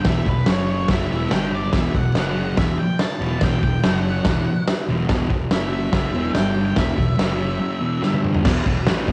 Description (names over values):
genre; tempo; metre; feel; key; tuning
garage rock duo or trio; 143 BPM; 4/4; straight; E minor; A4 = 440 Hz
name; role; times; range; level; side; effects
octave-fuzz lead guitar; melody; 0.0-8.2 s; B4 to A5; -32 LUFS; equal; distortion, cassette tape
thick fuzz guitar; riff; 0.0-9.1 s; E2 to A3; -24 LUFS; equal; distortion, cassette tape
fuzz fingered electric bass; bass; 0.0-9.1 s; E1 to A1; -30 LUFS; equal; overdrive
raw garage drum kit; drums; 0.0-9.1 s; crash cymbal, hi-hat, kick drum, snare drum, toms; -24 LUFS; equal; cassette tape
room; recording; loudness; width
light reverb, small room reverb; home recording on cassette; -20 LUFS; mono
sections
0.0-8.5 A section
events
drum fill 8.0-8.5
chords
0.1 E5; 0.5 F#5; 0.9 E5; 1.3 G5; 1.7 E5; 2.1 F#5; 2.6 E5; 3.8 F#5; 4.3 E5; 5.5 F#5; 5.9 E5; 6.4 G5; 6.8 E5; 7.2 F#5; 7.6 E5; 8.0 G5; 8.5 E5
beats
| 0.06 0.47 0.89 1.31 | 1.73 2.15 2.57 2.99 | 3.41 3.83 4.25 4.67 | 5.09 5.51 5.93 6.36 | 6.78 7.20 7.62 8.03 | 8.45 8.87